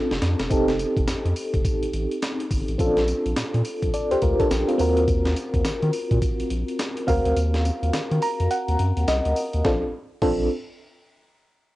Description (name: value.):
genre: R&B, new jack swing.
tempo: 105 BPM.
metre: 4/4.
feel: swing 61% on 16ths.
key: Bb major.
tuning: A4 = 441 Hz.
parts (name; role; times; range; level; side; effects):
FM electric piano with tremolo; accompaniment; 0.0-10.5 s; C4 to Bb5; -23 LUFS; equal; phaser, plate reverb.
round analog bass; bass; 0.1-10.5 s; E1 to Eb3; -24 LUFS; equal; none.
breakbeat sampler-style drum kit; drums; 0.1-10.4 s; crash cymbal, hi-hat, kick drum, snare drum, tambourine; -27 LUFS; equal; none.
room: light reverb.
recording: home recording on cassette, nothing above 10.6 kHz.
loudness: -20 LUFS.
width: side -17 dB against mid.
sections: 0.5-9.6 A section; 9.6-11.8 B section.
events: drum fill 0.0-0.5; kick muted 7.4-9.6; FM electric piano fill 7.9-9.6.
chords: 0.0 Bbmaj9 (rootless); 0.5 F9; 2.8 Bbmaj9; 4.8 Ebm6; 9.6 Bbmaj9.